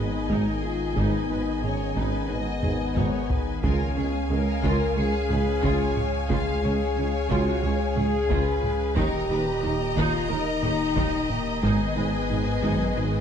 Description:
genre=cinematic, hybrid orchestral and electronic film score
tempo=90 BPM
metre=4/4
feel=straight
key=G# dorian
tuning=A4 = 440 Hz
part: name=rich symphonic violin section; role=melody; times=0.0-13.2 s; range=G4 to E#5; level=-37 LUFS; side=left 4 dB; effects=none
part: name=rich symphonic violin section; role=second line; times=0.0-13.2 s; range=D#5 to A#5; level=-34 LUFS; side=left 3 dB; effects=none
part: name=rich symphonic viola section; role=accompaniment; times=0.0-13.2 s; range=D#4 to E#5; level=-34 LUFS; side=right 2 dB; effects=none
part: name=hollow soft pad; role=sustained chords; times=0.0-13.2 s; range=A#2 to A#5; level=-33 LUFS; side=equal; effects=chorus
part: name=mellow French horn section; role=sustained chords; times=0.0-13.2 s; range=A#3 to A#4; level=-29 LUFS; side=left 4 dB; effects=none
part: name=thumb-piano-like synth pluck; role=arpeggios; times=0.0-13.2 s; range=A#2 to D#4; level=-34 LUFS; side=left 3 dB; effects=chorus
part: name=dark symphonic cello section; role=bass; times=0.0-13.2 s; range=F#2 to D#3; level=-32 LUFS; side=right 3 dB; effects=none
part: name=rich symphonic double bass section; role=bass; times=0.0-13.0 s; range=G#1 to D#2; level=-32 LUFS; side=right 3 dB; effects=none
part: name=warm sub bass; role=bass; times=0.0-13.2 s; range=D#1 to C#2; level=-32 LUFS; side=equal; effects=none
part: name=warm tuba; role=bass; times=0.0-13.1 s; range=G#1 to D#2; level=-34 LUFS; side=right 4 dB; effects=none
part: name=solo taiko drums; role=drums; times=0.3-13.2 s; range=none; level=-31 LUFS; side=equal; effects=none
part: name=reverse cymbal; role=sound effects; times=12.9-13.2 s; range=none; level=-50 LUFS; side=left 6 dB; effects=none
room=moderate scoring stage reverb, RT60 1.5 s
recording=dark, warm production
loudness=-22 LUFS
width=side -8 dB against mid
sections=0.0-13.2 A section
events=drum fill 2.6-3.6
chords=0.0 G#m; 3.6 C#; 9.0 D#; 11.6 G#m

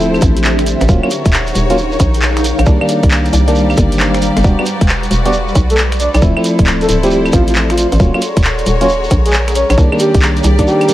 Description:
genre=UK garage, two-step garage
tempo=135 BPM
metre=4/4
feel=swing 66% on 16ths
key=unclear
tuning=A4 = 440 Hz
part: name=clear studio violin section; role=sustained chords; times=0.0-10.9 s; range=E4 to D5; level=-24 LUFS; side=left 2 dB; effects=sidechain pumping
part: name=FM electric piano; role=stabs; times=0.0-10.9 s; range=Eb3 to F#4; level=-16 LUFS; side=equal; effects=chorus
part: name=hollow knocking FM bass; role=bass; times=0.0-10.7 s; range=D1 to C2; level=-14 LUFS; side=equal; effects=sidechain pumping
part: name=shekere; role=percussion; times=0.0-10.9 s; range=none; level=-26 LUFS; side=right 3 dB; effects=none
part: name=granular cloud pad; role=texture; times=0.0-10.9 s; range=G3 to C6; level=-20 LUFS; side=equal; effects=built-in reverb, sidechain pumping
part: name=punchy analog drum machine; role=drums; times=0.1-10.9 s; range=claves, finger snaps, handclaps, hi-hat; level=-18 LUFS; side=equal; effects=none
part: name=electronic kick drum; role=drums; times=0.2-10.7 s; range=none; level=-12 LUFS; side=equal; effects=none
part: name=breathy flute-like synth lead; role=melody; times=5.3-10.9 s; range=F4 to D5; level=-16 LUFS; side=right 1 dB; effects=chorus
room=light reverb, digital ambience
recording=vinyl crackle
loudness=-10 LUFS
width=side -14 dB against mid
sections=0.0-10.9 A section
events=none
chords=0.0 Dm9; 0.9 D#m9; 2.7 Cm9; 4.4 Em9; 6.2 Dm9; 8.0 D#m9; 9.8 Cm9

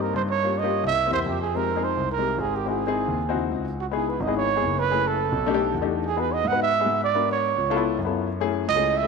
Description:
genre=jazz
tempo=214 BPM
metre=4/4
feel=straight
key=C# minor from 3.8 s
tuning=A4 = 441 Hz
part: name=breathy trumpet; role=melody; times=0.0-9.1 s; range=F#4 to F#5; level=-24 LUFS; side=right 8 dB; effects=tape echo
part: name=dark baby grand piano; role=accompaniment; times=0.0-9.1 s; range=Ab3 to B4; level=-27 LUFS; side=left 13 dB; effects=none
part: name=dark concert grand piano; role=bass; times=0.0-9.1 s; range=F#1 to G#2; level=-29 LUFS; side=left 1 dB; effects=none
room=moderate plate reverb, RT60 2.4 s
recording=1960s-style stereo with parts hard left and right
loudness=-21 LUFS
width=side -4 dB against mid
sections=0.0-3.8 A section; 3.8-9.1 B section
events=none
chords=0.4 Gm7b5; 1.0 C7; 1.5 Fm7; 2.7 Ab7b13; 3.8 C#m9; 4.9 F#m9; 5.5 B7alt; 6.0 Emaj7; 7.1 G#m7b5; 7.7 C#7alt; 8.3 F#m9

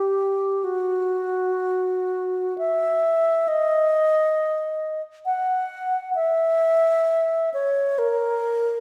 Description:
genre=classical, free, expressive piece for unaccompanied alto flute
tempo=56-68 BPM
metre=3/4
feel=rubato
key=unclear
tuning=A4 = 440 Hz
part: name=wooden-headed alto flute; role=solo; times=0.0-8.8 s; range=F#4 to F#5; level=-22 LUFS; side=equal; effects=none
room=wet concert hall reverb, RT60 1.9 s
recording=heard from further back in the room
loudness=-23 LUFS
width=mono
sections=0.0-8.8 A section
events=none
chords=none

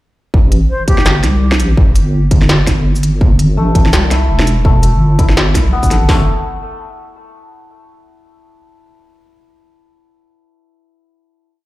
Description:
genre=half-time drum and bass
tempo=167 BPM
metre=4/4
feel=swing 57% on 16ths, half-time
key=A minor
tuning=A4 = 440 Hz
part: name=deep soft wobble bass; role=bass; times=0.3-6.3 s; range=E1 to C2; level=-12 LUFS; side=equal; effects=chorus
part: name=industrial drum kit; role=drums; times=0.3-6.2 s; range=hi-hat, kick drum, snare drum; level=-12 LUFS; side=equal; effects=distortion
part: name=industrial drum kit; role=drums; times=0.5-6.0 s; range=hi-hat, shaker, snare drum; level=-18 LUFS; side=equal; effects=none
part: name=breathy concert flute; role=melody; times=0.7-1.2 s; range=G4 to C5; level=-21 LUFS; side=left 1 dB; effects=tape echo
part: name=santur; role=arpeggios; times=3.6-6.3 s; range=A3 to A4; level=-21 LUFS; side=left 3 dB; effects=tape echo
room=little or no reverb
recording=played on a big sound system in a bare room, large studio reverb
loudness=-9 LUFS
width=side -17 dB against mid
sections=0.3-6.1 drop; 6.1-7.5 final note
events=drop 0.3-6.1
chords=0.3 A5; 6.1 N.C.

